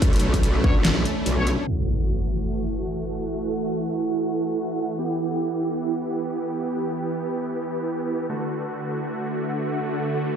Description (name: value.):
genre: heavy wobble dubstep.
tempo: free time.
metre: none.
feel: none.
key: F# phrygian.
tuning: A4 = 440 Hz.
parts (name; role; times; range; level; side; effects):
supersaw chords; sustained chords; 0.0-10.4 s; D3 to G4; -27 LUFS; right 1 dB; sidechain pumping.
metallic wobble bass; bass; 0.0-1.6 s; B1; -22 LUFS; equal; chorus, overdrive.
dubstep drum kit; drums; 0.0-1.6 s; handclaps, hi-hat, snare drum; -25 LUFS; left 1 dB; overdrive.
electronic kick drum; drums; 0.0-0.7 s; none; -20 LUFS; equal; overdrive.
granular cloud pad; texture; 0.0-10.4 s; D4 to B5; -29 LUFS; right 3 dB; built-in reverb, sidechain pumping.
warm brass ensemble; stabs; 0.6-1.5 s; B3 to C#5; -30 LUFS; left 3 dB; tape echo.
impact; sound effects; 1.7-3.3 s; none; -26 LUFS; equal; none.
room: moderate digital room reverb, RT60 1.1 s.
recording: played on a big sound system in a bare room, large studio reverb, low-pass filter.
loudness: -22 LUFS.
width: side -8 dB against mid.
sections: 0.0-1.7 A section; 1.7-10.4 B section.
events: drop 0.0-1.7; break 0.8-1.7; impact 1.7-3.3; filter sweep 1.7-10.4.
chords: 0.0 Bmadd9; 1.7 F#m7; 5.0 Em; 8.3 D.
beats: free time.